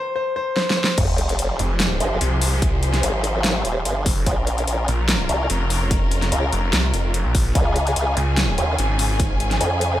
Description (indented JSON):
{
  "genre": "heavy wobble dubstep",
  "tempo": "146 BPM",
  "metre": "4/4",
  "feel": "swing 53% on 16ths, half-time",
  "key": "F minor",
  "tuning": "A4 = 440 Hz",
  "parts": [
    { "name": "clear grand piano", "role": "melody", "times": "0.0-1.0 s", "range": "C5", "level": "-24 LUFS", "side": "left 2 dB", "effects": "digital delay" },
    { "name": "dubstep drum kit", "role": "drums", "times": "0.6-9.9 s", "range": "crash cymbal, hi-hat, snare drum", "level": "-24 LUFS", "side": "equal", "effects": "studio reverb" },
    { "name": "warm studio string section", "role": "sustained chords", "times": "1.0-10.0 s", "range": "Db3 to Ab5", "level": "-27 LUFS", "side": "left 1 dB", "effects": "sidechain pumping" },
    { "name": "formant-sweep wobble bass", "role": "bass", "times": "1.0-10.0 s", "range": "Eb1 to F2", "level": "-21 LUFS", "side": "equal", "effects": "chorus, overdrive" },
    { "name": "electronic kick drum", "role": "drums", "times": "1.0-9.3 s", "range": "none", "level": "-21 LUFS", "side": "equal", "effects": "studio reverb" },
    { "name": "sub drop", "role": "sound effects", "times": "1.0-2.6 s", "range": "none", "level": "-28 LUFS", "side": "equal", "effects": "none" },
    { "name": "snarling distorted saw bass", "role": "bass", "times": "1.6-9.6 s", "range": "F1 to Db2", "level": "-21 LUFS", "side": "equal", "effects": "distortion, overdrive" }
  ],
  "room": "little or no reverb",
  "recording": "none",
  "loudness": "-18 LUFS",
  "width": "side -13 dB against mid",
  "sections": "1.0-10.0 A section",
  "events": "break 0.0-1.0; drum fill 0.6-1.0; drop 1.0-10.0; impact 1.0-2.6",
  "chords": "0.0 N.C.; 1.0 Fmadd9; 4.3 Bbm; 7.6 Db"
}